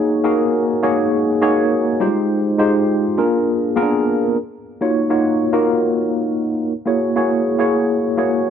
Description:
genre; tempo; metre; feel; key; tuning
pop; 102 BPM; 4/4; swing 54% on 16ths; Eb minor; A4 = 440 Hz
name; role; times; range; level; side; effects
mellow tine electric piano; solo; 0.0-8.5 s; G3 to Db5; -15 LUFS; equal; overdrive, medium stereo tremolo, wide subtle chorus
room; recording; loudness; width
little or no reverb; dry, close 1970s-style studio recording; -15 LUFS; side -8 dB against mid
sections
0.0-4.4 A section; 4.4-8.5 B section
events
none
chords
0.0 Gb69; 2.0 Fm7; 3.2 Bb7; 4.4 Ebm7; 6.7 Gb7

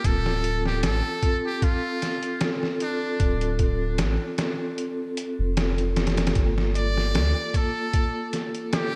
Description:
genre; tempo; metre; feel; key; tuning
trip hop; 76 BPM; 4/4; swing 54% on 16ths; unclear; A4 = 440 Hz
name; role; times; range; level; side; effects
trumpet with metal mute; melody; 0.0-9.0 s; D4 to D5; -33 LUFS; equal; vintage 12-bit sampler grit, tape echo
vibraphone with soft mallets; accompaniment; 0.0-9.0 s; Bb3 to A4; -31 LUFS; equal; tremolo, tape echo
soft dub sub bass; bass; 0.0-7.3 s; D1 to D2; -28 LUFS; equal; none
trip hop sampler-style drum kit; drums; 0.0-8.9 s; hi-hat, kick drum, snare drum; -28 LUFS; equal; studio reverb, gated reverb
room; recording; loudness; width
light reverb, small room ambience; bright 1980s-style digital production; -25 LUFS; mono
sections
0.0-9.0 A section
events
kick drops out 4.8-6.4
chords
0.0 Dm7; 6.4 Gm7

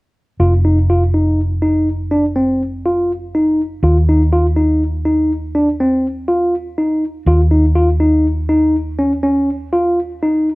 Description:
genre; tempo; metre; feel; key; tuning
progressive instrumental, band music in an uneven meter; 122 BPM; 7/4; straight; unclear; A4 = 441 Hz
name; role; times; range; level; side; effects
tine electric piano; arpeggios; 0.4-10.5 s; C4 to F4; -15 LUFS; equal; cassette tape, plate reverb
woody fretless electric bass; bass; 0.4-10.6 s; F1 to Eb2; -16 LUFS; equal; none
room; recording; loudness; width
moderate small room reverb, RT60 0.5 s; home recording on cassette; -13 LUFS; side -22 dB against mid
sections
0.4-10.6 A section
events
none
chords
0.4 F5; 3.8 Ebsus2; 7.3 Dbadd9/Eb (rootless)

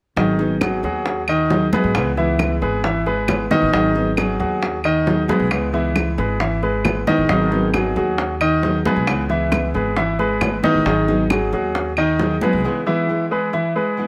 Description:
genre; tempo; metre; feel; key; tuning
latin, Cuban son and guajira; 135 BPM; 4/4; straight; G# minor; A4 = 445 Hz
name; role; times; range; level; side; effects
nylon-string guitar; accompaniment; 0.2-14.1 s; C#3 to G#4; -25 LUFS; equal; none
clear concert grand piano; arpeggios; 0.2-14.1 s; D#3 to E5; -21 LUFS; equal; none
upright bass; bass; 0.2-12.6 s; G#1 to G#2; -28 LUFS; equal; none
bongos; percussion; 0.2-12.4 s; none; -28 LUFS; equal; none
congas; percussion; 0.2-12.6 s; none; -29 LUFS; equal; none
claves; percussion; 0.6-12.2 s; none; -29 LUFS; equal; none
room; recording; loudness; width
light reverb; none; -19 LUFS; mono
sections
0.2-14.1 A section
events
none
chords
0.2 G#m7; 1.9 C#m7; 3.7 G#m7; 5.5 C#m7; 7.3 G#m7; 9.1 C#m7; 10.9 G#m7; 12.6 C#m7

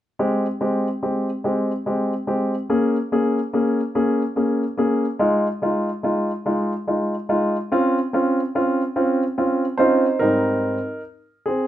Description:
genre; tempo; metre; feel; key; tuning
pop; 48 BPM (dotted quarters); 6/8; straight; Ab major; A4 = 440 Hz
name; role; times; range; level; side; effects
clear baby grand piano; solo; 0.2-11.7 s; Ab2 to C5; -19 LUFS; equal; none
room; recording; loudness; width
wet studio reverb, RT60 0.5 s; rough home demo mix; -19 LUFS; side -12 dB against mid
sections
0.2-10.2 A section; 10.2-11.7 B section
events
grand piano solo 10.2-11.7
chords
0.2 Abmaj7; 2.7 Bbm7; 5.2 Fm7; 7.7 Dbmaj7; 10.2 Abmaj7

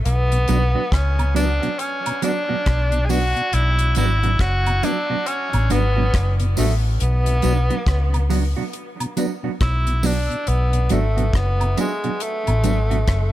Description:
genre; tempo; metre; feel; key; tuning
roots reggae; 69 BPM; 4/4; swing 62% on 16ths; B dorian; A4 = 440 Hz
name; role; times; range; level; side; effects
vintage muted fingered electric bass; bass; 0.0-13.3 s; F#1 to C#2; -19 LUFS; equal; none
bright tenor saxophone; melody; 0.1-13.3 s; G#3 to G#4; -23 LUFS; equal; tape echo
deep reggae drum kit; drums; 0.1-13.3 s; hi-hat, kick drum, rim click; -25 LUFS; left 1 dB; none
mellow tonewheel organ; accompaniment; 0.3-13.0 s; B2 to D4; -29 LUFS; left 3 dB; chorus vibrato, slow rotary speaker
mellow electric guitar; accompaniment; 0.5-13.0 s; F#3 to F#4; -28 LUFS; right 7 dB; tape echo
tambourine and woodblock; percussion; 0.5-12.9 s; none; -33 LUFS; right 4 dB; none
room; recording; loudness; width
studio ambience; echo-heavy mix; -17 LUFS; side -14 dB against mid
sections
0.0-13.3 A section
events
none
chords
0.0 Bm

